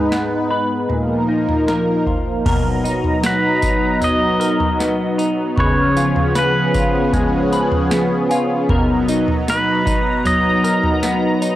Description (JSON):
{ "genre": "dream pop", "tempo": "77 BPM", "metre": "4/4", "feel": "straight", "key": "unclear", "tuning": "A4 = 440 Hz", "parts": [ { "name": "warm analog pad", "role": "sustained chords", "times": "0.0-11.6 s", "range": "F3 to A#5", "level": "-18 LUFS", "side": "equal", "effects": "chorus" }, { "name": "semi-hollow electric guitar", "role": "arpeggios", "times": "0.0-11.6 s", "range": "Ab2 to Cb5", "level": "-21 LUFS", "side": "left 1 dB", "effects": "analog chorus, analog delay" }, { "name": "booming analog drum machine", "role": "drums", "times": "0.1-11.6 s", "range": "crash cymbal, kick drum, snare drum, tambourine, toms", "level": "-22 LUFS", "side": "equal", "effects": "overdrive" }, { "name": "worn celesta", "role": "texture", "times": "2.8-9.0 s", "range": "Ab5 to F6", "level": "-31 LUFS", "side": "left 1 dB", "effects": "none" }, { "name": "pedal steel guitar", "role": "melody", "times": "3.3-11.4 s", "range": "B4 to D#5", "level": "-20 LUFS", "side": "equal", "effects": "analog delay" } ], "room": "light reverb, digital ambience", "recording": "dry, gritty hardware recording, cassette tape", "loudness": "-15 LUFS", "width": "side -14 dB against mid", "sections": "0.0-2.5 A section; 2.5-11.6 B section", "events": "none", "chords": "0.0 Abm; 0.9 Bbsus4; 2.5 Bmaj7; 5.6 Db7; 8.7 Bmaj7" }